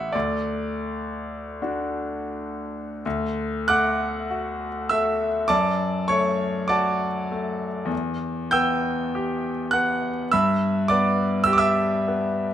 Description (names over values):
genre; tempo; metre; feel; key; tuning
classical, romantic nocturne for solo piano; 40-54 BPM; 4/4; rubato; D major; A4 = 440 Hz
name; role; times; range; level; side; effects
bright grand piano; solo; 0.0-12.5 s; A1 to G6; -22 LUFS; equal; none
room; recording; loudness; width
moderate recital hall reverb, RT60 1.4 s; close, detailed microphones; -21 LUFS; side -10 dB against mid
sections
0.0-3.0 A section; 3.0-12.5 B section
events
none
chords
0.1 D; 5.5 D/F#; 7.9 Em; 10.3 Em/G